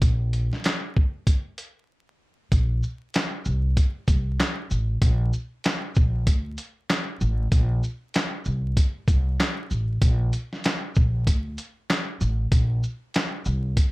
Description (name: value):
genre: hip hop, boom-bap hip-hop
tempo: 96 BPM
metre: 4/4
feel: swing 60% on 16ths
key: Bb major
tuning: A4 = 440 Hz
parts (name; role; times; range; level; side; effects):
- upright bass; bass; 0.0-13.7 s; A1 to D2; -24 LUFS; equal; none
- dusty soul sampler-style drum kit; drums; 0.0-13.9 s; handclaps, hi-hat, kick drum, shaker, snare drum; -22 LUFS; equal; vintage 12-bit sampler grit
room: little or no reverb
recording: vinyl crackle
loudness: -22 LUFS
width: side -21 dB against mid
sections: 0.0-2.5 A section; 2.5-13.9 B section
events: break 1.9-2.5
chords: none